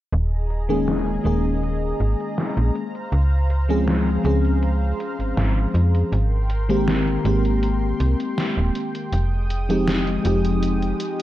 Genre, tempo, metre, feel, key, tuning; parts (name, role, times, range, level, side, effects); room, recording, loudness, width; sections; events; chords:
vaporwave; 80 BPM; 4/4; straight; A4 = 439 Hz
lush unison pad; sustained chords; 0.1-11.2 s; Ab3 to Eb6; -32 LUFS; right 1 dB; chorus
slap-like FM bass; bass; 0.1-10.9 s; Eb1 to F2; -21 LUFS; equal
gated 80s digital drum machine; drums; 0.1-11.2 s; hi-hat, snare drum; -28 LUFS; equal; gated reverb, gated reverb snare, low-pass filter on hats, low-pass filter on snare, low-pass filter on room
FM electric piano with soft pad layer; accompaniment; 0.7-11.2 s; Eb3 to Ab4; -22 LUFS; left 1 dB; analog chorus, cassette tape, analog delay
light reverb, digital ambience; dark, warm production; -19 LUFS; side -14 dB against mid
0.1-11.2 A section
filter sweep on drum 0.1-11.2
0.1 Eb7sus4; 2.8 Dbmaj7; 6.1 Abmaj9; 9.1 Fm9